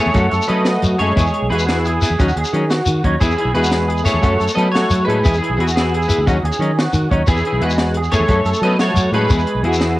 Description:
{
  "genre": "highlife guitar band",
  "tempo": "118 BPM (dotted quarters)",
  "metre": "12/8",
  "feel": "straight",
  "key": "E major",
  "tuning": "A4 = 440 Hz",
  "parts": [
    { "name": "electric guitar at the edge of break-up", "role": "melody", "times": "0.0-10.0 s", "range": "E4 to D#5", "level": "-20 LUFS", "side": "equal", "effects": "analog chorus" },
    { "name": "breathy trombone", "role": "second line", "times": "0.0-10.0 s", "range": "E3 to B3", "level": "-24 LUFS", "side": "left 1 dB", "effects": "cassette tape" },
    { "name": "clean electric guitar", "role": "accompaniment", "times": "0.0-9.8 s", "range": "E3 to A4", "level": "-23 LUFS", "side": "left 2 dB", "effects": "cassette tape" },
    { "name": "electric guitar through a small old amp", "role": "arpeggios", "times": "0.0-10.0 s", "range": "F#4 to C#5", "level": "-23 LUFS", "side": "right 2 dB", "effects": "analog chorus, cassette tape, analog delay" },
    { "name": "fingered electric bass", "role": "bass", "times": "0.1-10.0 s", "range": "B1 to F#3", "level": "-19 LUFS", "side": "equal", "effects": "none" },
    { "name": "compact cocktail drum kit", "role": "drums", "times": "0.1-9.9 s", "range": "hi-hat, kick drum, snare drum", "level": "-20 LUFS", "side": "equal", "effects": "cassette tape" },
    { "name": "shekere", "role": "percussion", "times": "0.2-9.9 s", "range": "none", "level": "-22 LUFS", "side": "left 1 dB", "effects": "none" }
  ],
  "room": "moderate spring reverb, RT60 1.3 s, studio reverb",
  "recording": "home recording on cassette",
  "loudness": "-14 LUFS",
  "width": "side -17 dB against mid",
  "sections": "0.0-10.0 A section",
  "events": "none",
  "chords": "0.1 F#m; 1.2 E; 2.2 D#m7; 3.2 E; 4.2 F#m; 5.2 E; 6.3 D#madd11; 7.3 E; 8.3 F#m; 9.3 E",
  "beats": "0.15 0.66 | 1.17 1.68 2.19 2.70 | 3.21 3.72 4.23 4.74 | 5.25 5.75 6.26 6.77 | 7.28 7.79 8.30 8.80 | 9.31 9.82"
}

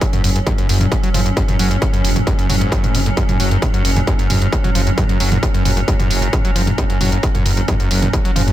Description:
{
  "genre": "driving peak-time techno",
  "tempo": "133 BPM",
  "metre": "4/4",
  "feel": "straight",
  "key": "unclear",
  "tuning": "A4 = 440 Hz",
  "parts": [
    { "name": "screaming distorted acid line", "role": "riff", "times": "0.0-8.5 s", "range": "F#2 to F#3", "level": "-20 LUFS", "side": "equal", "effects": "distortion, chorus, cassette tape, sidechain pumping, digital delay" },
    { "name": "swarming drone", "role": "drone", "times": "0.0-8.5 s", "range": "F#3 to C#4", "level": "-23 LUFS", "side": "right 1 dB", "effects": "built-in reverb, sidechain pumping" },
    { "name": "electronic kick drum", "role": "drums", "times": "0.0-8.2 s", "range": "none", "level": "-18 LUFS", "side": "equal", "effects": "distortion" },
    { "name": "techno drum kit", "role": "drums", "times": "0.0-8.5 s", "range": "hi-hat, toms", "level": "-23 LUFS", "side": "right 1 dB", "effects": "sidechain pumping on hats, sidechain pumping on toms" },
    { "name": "growling FM bass", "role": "bass", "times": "0.2-8.5 s", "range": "F#1", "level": "-18 LUFS", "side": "equal", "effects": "sidechain pumping" }
  ],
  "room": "little or no reverb",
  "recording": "none",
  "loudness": "-14 LUFS",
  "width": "side -13 dB against mid",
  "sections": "0.0-8.5 A section",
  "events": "none",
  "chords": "0.0 F#5",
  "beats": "0.01 0.47 0.92 | 1.37 1.82 2.27 2.72 | 3.17 3.62 4.07 4.53 | 4.98 5.43 5.88 6.33 | 6.78 7.23 7.68 8.13"
}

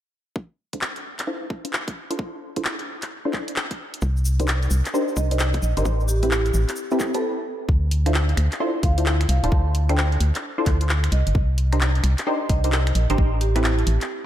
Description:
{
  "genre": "UK garage, two-step garage",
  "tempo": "131 BPM",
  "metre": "4/4",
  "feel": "swing 64% on 16ths",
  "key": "unclear",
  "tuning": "A4 = 439 Hz",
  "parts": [
    { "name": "electronic kick drum", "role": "drums", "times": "0.4-13.3 s", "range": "none", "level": "-23 LUFS", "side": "equal", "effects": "high-pass filter on kick" },
    { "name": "punchy chord stab", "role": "stabs", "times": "0.7-13.7 s", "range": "C4 to C5", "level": "-27 LUFS", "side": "equal", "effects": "chorus, phaser, diffuse ambient delay" },
    { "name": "garage drum kit", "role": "drums", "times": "0.7-14.1 s", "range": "finger snaps, handclaps, hi-hat", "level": "-28 LUFS", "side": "left 1 dB", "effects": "none" },
    { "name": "organ-like FM bass", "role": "bass", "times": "4.0-14.0 s", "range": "D1 to D2", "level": "-20 LUFS", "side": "equal", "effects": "none" },
    { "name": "cabasa", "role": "percussion", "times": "4.0-7.2 s", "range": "none", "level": "-36 LUFS", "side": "left 1 dB", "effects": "none" },
    { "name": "marimba with medium hard mallets", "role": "melody", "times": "5.2-13.6 s", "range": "G4 to A5", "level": "-30 LUFS", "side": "right 3 dB", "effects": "diffuse ambient delay" }
  ],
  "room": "moderate lush hall reverb, RT60 1.9 s",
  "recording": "dreamy mix soaked in reverb",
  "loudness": "-20 LUFS",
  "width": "side -12 dB against mid",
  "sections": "0.4-7.7 A section; 7.7-14.3 B section",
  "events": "break 7.2-7.7",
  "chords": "0.4 Dm9; 3.8 Cm9; 5.9 Am9; 7.7 Dm9; 11.1 Cm9; 13.2 Am9",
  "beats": "| 0.36 0.82 1.27 1.73 | 2.19 2.65 3.11 3.56 | 4.02 4.48 4.94 5.40 | 5.85 6.31 6.77 7.23 | 7.69 8.14 8.60 9.06 | 9.52 9.98 10.43 10.89 | 11.35 11.81 12.27 12.72 | 13.18 13.64"
}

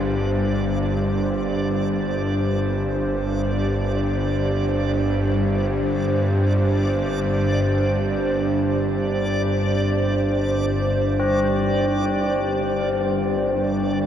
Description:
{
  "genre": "dark ambient drone",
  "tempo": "free time",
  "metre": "none",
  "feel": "none",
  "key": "unclear",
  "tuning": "A4 = 440 Hz",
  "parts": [
    { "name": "dark analog pad", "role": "sustained chords", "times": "0.0-14.1 s", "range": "D4 to C5", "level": "-24 LUFS", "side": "right 1 dB", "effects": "chorus" },
    { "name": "tubular bells", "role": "arpeggios", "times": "0.0-14.1 s", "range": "C4 to F4", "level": "-29 LUFS", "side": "left 3 dB", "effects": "tape echo" },
    { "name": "bowed-like drone", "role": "drone", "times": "0.0-14.1 s", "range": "G1 to G2", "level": "-22 LUFS", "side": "equal", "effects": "built-in reverb" },
    { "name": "backwards swelling texture", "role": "texture", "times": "0.0-14.1 s", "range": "D5", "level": "-31 LUFS", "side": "right 1 dB", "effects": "built-in reverb" }
  ],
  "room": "wet cathedral reverb, RT60 6.1 s",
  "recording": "dark, warm production",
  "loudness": "-19 LUFS",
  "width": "side -9 dB against mid",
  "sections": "0.0-14.1 A section",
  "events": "none",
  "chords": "0.0 G5",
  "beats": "free time"
}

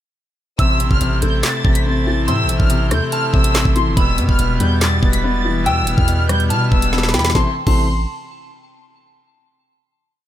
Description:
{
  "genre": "hip hop, drill",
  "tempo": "142 BPM",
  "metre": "4/4",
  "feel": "half-time",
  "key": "A minor",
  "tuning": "A4 = 441 Hz",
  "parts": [
    { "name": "dark symphonic violin section", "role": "melody", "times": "0.6-7.9 s", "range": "B5 to B6", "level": "-22 LUFS", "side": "left 1 dB", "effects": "none" },
    { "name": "soft synth bell", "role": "second line", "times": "0.6-7.9 s", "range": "G5 to E6", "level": "-27 LUFS", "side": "right 1 dB", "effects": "chorus, phaser, ping-pong delay" },
    { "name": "felt-muted upright piano", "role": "accompaniment", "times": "0.6-7.9 s", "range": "B2 to C4", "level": "-21 LUFS", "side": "left 4 dB", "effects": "none" },
    { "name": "pipe organ, trumpet", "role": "sustained chords", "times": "0.6-7.5 s", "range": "G3 to C5", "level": "-28 LUFS", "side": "right 3 dB", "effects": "none" },
    { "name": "long sustained 808-style bass", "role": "bass", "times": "0.6-8.1 s", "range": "E1 to B2", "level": "-19 LUFS", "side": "right 1 dB", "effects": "none" },
    { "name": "drill drum kit", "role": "drums", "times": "0.6-7.8 s", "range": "crash cymbal, handclaps, hi-hat, kick drum, rim click, snare drum", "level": "-17 LUFS", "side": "right 1 dB", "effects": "none" }
  ],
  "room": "small room reverb",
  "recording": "none",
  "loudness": "-14 LUFS",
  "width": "side -12 dB against mid",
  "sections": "0.6-7.3 hook; 7.3-9.0 final chord",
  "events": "drum fill 6.9-7.3",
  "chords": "0.6 Am; 4.0 Em; 7.3 Am",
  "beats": "| 0.59 1.01 1.44 1.86 | 2.28 2.70 3.12 3.55 | 3.97 4.39 4.82 5.24 | 5.66 6.08 6.50 6.93 | 7.35 7.77"
}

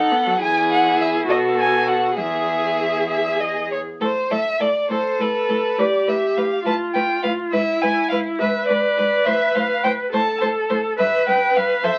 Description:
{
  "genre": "quick classical-period movement for string quartet",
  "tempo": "69 BPM (dotted quarters)",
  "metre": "6/8",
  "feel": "rubato",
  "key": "E major, A minor from 4.0 s",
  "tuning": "A4 = 439 Hz",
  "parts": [
    { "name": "warm violin", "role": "melody", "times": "0.0-12.0 s", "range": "B4 to A5", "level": "-23 LUFS", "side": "equal", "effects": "none" },
    { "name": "rich violin", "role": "second line", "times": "0.0-11.9 s", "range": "F#4 to C5", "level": "-27 LUFS", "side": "equal", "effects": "none" },
    { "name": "rich viola", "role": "accompaniment", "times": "0.0-12.0 s", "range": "F#3 to C5", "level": "-25 LUFS", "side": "equal", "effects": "none" },
    { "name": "rich cello", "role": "bass", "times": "0.0-11.9 s", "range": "E2 to B2", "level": "-31 LUFS", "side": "equal", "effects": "none" }
  ],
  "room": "moderate studio reverb, RT60 0.6 s",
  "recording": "very old 78 rpm record, vinyl crackle",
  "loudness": "-20 LUFS",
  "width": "mono",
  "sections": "0.0-4.0 A section; 4.0-12.0 B section",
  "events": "none",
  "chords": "0.4 E; 1.3 B5; 2.2 E; 4.0 Amadd9; 5.8 G9/A; 7.5 E/G#; 9.3 Am; 11.0 G7",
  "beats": "| 0.41 1.28 | 2.17 3.09 | 4.01 4.91 | 5.78 6.65 | 7.52 8.39 | 9.26 10.12 | 10.99 11.84"
}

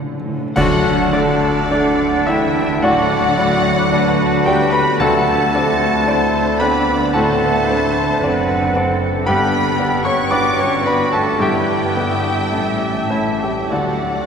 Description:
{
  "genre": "classical, romantic movement for piano and orchestra",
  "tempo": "55 BPM",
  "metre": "4/4",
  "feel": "uneven beats, rubato",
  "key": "D major",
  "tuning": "A4 = 436 Hz",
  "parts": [
    { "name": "clear grand piano", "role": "melody", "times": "0.0-14.3 s", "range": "D2 to D6", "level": "-18 LUFS", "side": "equal", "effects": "none" },
    { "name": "rich symphonic violin section", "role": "second line", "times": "0.0-14.3 s", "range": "F#4 to D6", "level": "-28 LUFS", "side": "left 1 dB", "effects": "none" },
    { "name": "rich symphonic viola section", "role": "accompaniment", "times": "0.0-14.3 s", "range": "A3 to E5", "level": "-26 LUFS", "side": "right 2 dB", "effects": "none" },
    { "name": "rich symphonic cello section", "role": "bass", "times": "0.0-14.3 s", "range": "F#2 to D3", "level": "-26 LUFS", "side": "right 2 dB", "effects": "none" },
    { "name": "timpani", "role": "percussion", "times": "0.0-6.6, 13.7-14.3 s", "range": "D3", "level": "-29 LUFS", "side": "equal", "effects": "none" },
    { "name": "warm symphonic violin section", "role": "melody", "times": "0.6-14.3 s", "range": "D5 to D6", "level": "-27 LUFS", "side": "left 3 dB", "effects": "none" },
    { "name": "clear oboe", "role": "second line", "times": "0.6-14.3 s", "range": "D4 to D5", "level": "-26 LUFS", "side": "right 1 dB", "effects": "none" },
    { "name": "flute section", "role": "second line", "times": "0.6-14.3 s", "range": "E5 to B5", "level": "-26 LUFS", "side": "right 1 dB", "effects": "none" },
    { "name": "warm clarinet", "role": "second line", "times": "0.6-14.3 s", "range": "B3 to F#4", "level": "-26 LUFS", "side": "right 1 dB", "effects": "none" },
    { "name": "mellow French horn section", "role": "sustained chords", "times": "0.6-14.3 s", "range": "D3 to D4", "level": "-23 LUFS", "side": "left 3 dB", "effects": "none" },
    { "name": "warm trombone section", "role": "sustained chords", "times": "0.6-14.2 s", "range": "D3 to D4", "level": "-32 LUFS", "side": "right 2 dB", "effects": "none" },
    { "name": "mellow trumpet", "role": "stabs", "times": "0.6-14.2 s", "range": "F#4 to A4", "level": "-30 LUFS", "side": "right 1 dB", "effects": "none" },
    { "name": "warm symphonic double bass section", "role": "bass", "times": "0.6-14.3 s", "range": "F#1 to D2", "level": "-27 LUFS", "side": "right 1 dB", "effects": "none" },
    { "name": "clash cymbals and concert bass drum", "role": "percussion", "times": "0.6-2.8 s", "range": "none", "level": "-30 LUFS", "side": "right 1 dB", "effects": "none" }
  ],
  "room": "wet cathedral reverb, RT60 5.8 s",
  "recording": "minimal, uncompressed stereo recording",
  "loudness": "-14 LUFS",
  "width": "side -6 dB against mid",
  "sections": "0.6-14.3 A section",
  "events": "timpani fill 0.0-0.6; band accent 0.6-1.7",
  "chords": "0.0 D; 5.0 D7; 9.3 G; 11.4 Em/G; 12.5 A7; 13.7 D",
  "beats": "| 0.56 1.71 2.83 3.92 | 5.00 6.07 7.13 8.21 | 9.26 10.30 11.40 12.52 | 13.70"
}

